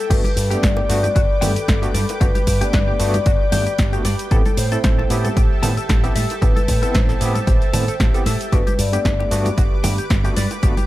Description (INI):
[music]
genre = nu-disco, nu disco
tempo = 114 BPM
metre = 4/4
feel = swing 55% on 16ths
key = G major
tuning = A4 = 439 Hz
[part]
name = vibraphone with medium mallets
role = melody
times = 0.0-10.1 s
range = G4 to D5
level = -25 LUFS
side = left 2 dB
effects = vintage 12-bit sampler grit, dub echo
[part]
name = lush unison pad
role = sustained chords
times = 0.0-10.9 s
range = A4 to D6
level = -31 LUFS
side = equal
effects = chorus, sidechain pumping
[part]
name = overdriven tine electric piano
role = accompaniment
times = 0.1-10.7 s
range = A3 to A4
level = -27 LUFS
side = equal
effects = fast tremolo, sidechain pumping, dub echo
[part]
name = direct-recorded clean electric guitar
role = riff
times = 0.1-10.8 s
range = F#4 to A5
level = -31 LUFS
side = left 3 dB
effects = analog chorus, dub echo
[part]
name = picked electric bass with an envelope filter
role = bass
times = 0.1-10.7 s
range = G1 to A2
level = -21 LUFS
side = equal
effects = tube saturation
[part]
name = electronic kick drum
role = drums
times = 0.1-10.7 s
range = none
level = -18 LUFS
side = equal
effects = studio reverb
[part]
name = house drum kit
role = drums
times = 0.1-10.9 s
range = cabasa, crash cymbal, hi-hat, snare drum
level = -26 LUFS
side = equal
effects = studio reverb, dub echo
[part]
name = congas and bongos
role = percussion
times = 0.2-10.9 s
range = none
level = -30 LUFS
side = equal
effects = dub echo
[sound]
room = digital ambience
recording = echo-heavy mix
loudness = -15 LUFS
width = side -16 dB against mid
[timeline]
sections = 0.0-10.9 A section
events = none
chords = 0.1 Gmaj7; 4.3 Am7; 8.5 Gmaj7